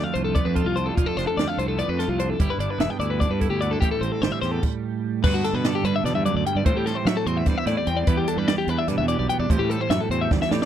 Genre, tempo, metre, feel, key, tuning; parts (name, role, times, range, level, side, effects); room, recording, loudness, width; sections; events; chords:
math rock and midwest emo; 295 BPM (eighths); 7/8; straight; G major from 5.2 s; A4 = 441 Hz
twelve-string electric guitar; accompaniment; 0.0-10.7 s; E2 to A4; -27 LUFS; right 9 dB; analog chorus
twelve-string electric guitar; arpeggios; 0.0-10.7 s; F4 to G5; -26 LUFS; left 7 dB
fuzz fingered electric bass; bass; 0.0-10.6 s; E1 to F#3; -26 LUFS; equal; overdrive
compact cocktail drum kit; drums; 0.2-10.7 s; crash cymbal, hi-hat, kick drum, snare drum; -24 LUFS; right 1 dB
little or no reverb; dry, close 1970s-style studio recording; -20 LUFS; side -10 dB against mid
0.0-5.2 A section; 5.2-10.7 B section
stop 4.6-5.2; drum fill 10.3-10.7
0.0 F6; 2.4 G69; 3.8 Am7; 5.2 Gmaj7; 6.7 Am7; 8.1 Em7; 9.5 Am7